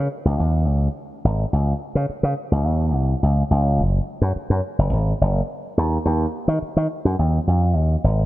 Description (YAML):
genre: funk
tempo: 106 BPM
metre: 4/4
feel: straight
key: Db major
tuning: A4 = 445 Hz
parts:
  - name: slap bass with an envelope filter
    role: solo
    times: 0.0-8.2 s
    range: Gb1 to Eb3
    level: -18 LUFS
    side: equal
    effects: none
room: light reverb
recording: dark, warm production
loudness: -18 LUFS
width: side -17 dB against mid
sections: 0.0-8.3 A section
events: none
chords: none